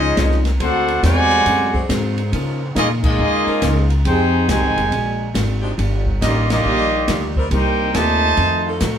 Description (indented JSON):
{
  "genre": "jazz, big band swing",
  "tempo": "139 BPM",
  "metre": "4/4",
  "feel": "swing 65% on 8ths",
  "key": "unclear",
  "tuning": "A4 = 440 Hz",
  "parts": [
    { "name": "warm trumpet section", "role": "melody", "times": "0.0-8.8 s", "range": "Bb3 to A5", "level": "-18 LUFS", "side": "right 1 dB", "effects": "none" },
    { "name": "mellow trombone section", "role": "second line", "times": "0.0-8.8 s", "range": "A2 to Ab4", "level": "-23 LUFS", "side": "left 1 dB", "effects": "none" },
    { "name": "vintage hollow-body jazz guitar", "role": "accompaniment", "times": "0.0-9.0 s", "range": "Bb2 to G4", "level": "-28 LUFS", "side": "left 2 dB", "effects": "none" },
    { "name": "upright bass", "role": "bass", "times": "0.0-9.0 s", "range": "F1 to Db3", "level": "-19 LUFS", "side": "equal", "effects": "none" },
    { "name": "open jazz drum kit", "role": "drums", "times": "0.2-8.9 s", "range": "crash cymbal, hi-hat, kick drum, ride cymbal, snare drum", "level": "-24 LUFS", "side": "equal", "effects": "none" },
    { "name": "clear saxophone section", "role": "sustained chords", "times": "0.6-9.0 s", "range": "F3 to Bb4", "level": "-28 LUFS", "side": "right 1 dB", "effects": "none" }
  ],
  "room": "moderate studio reverb, RT60 0.7 s",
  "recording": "band playing live in one room",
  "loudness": "-15 LUFS",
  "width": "side -8 dB against mid",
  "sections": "0.0-9.0 A section",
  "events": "band accent 3.0, 6.4",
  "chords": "0.0 Bbm11; 0.6 D7#11; 2.3 Db69; 4.1 Fm9; 4.9 Bb7b13; 5.8 Ebmaj9; 7.5 Cm7; 8.4 F7b9"
}